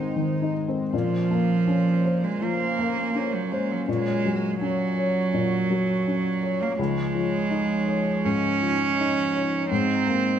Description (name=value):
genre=neoclassical piano and strings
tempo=82 BPM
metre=4/4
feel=rubato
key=Bb minor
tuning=A4 = 440 Hz
part: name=rich cello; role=second line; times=0.0-10.4 s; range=F3 to Eb4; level=-24 LUFS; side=right 4 dB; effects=none
part: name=dark upright piano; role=accompaniment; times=0.0-10.4 s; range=Db2 to Db5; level=-27 LUFS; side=left 4 dB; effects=none
part: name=chorused pulse-width pad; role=sustained chords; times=0.0-10.4 s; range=F3 to Db5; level=-31 LUFS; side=left 1 dB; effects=none
room=moderate recital hall reverb, RT60 1.4 s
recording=none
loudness=-22 LUFS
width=side -9 dB against mid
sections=0.9-10.4 A section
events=none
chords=0.0 Ab; 0.9 Bbmadd9; 3.9 Gb; 6.8 Dbadd9; 9.7 Abadd9